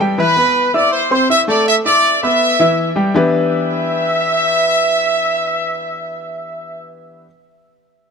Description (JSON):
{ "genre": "latin", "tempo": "162 BPM", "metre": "4/4", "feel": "straight", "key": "E minor", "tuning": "A4 = 440 Hz", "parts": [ { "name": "clear grand piano", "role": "accompaniment", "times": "0.0-7.3 s", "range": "E3 to E6", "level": "-17 LUFS", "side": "left 2 dB", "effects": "none" }, { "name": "bright trumpet section", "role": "melody", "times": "0.2-6.9 s", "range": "B4 to E5", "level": "-15 LUFS", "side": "right 1 dB", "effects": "none" } ], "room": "moderate plate reverb, RT60 3.5 s", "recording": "none", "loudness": "-12 LUFS", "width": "side -6 dB against mid", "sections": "0.0-3.1 A section; 3.1-6.1 B section", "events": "none", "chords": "0.2 E5; 0.9 Amadd11; 1.7 A5; 2.4 Bsus4; 3.1 Em7" }